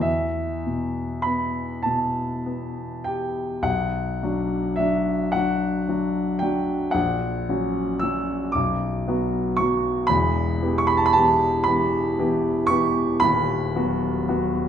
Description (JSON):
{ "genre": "classical, romantic nocturne for solo piano", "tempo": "32-39 BPM (dotted quarters)", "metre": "6/8", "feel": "rubato", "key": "E minor, B minor from 3.7 s", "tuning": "A4 = 440 Hz", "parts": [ { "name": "warm concert grand piano", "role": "solo", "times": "0.0-14.7 s", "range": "D#1 to E6", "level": "-21 LUFS", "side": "equal", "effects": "none" } ], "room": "wet recital hall reverb, RT60 1.6 s", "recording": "none", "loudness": "-21 LUFS", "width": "side -9 dB against mid", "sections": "0.0-3.7 A section; 3.7-14.7 B section", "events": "none", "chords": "0.1 Em; 3.7 Bm; 7.0 F#/A#; 8.6 Bm; 10.1 Em; 13.2 B/D#" }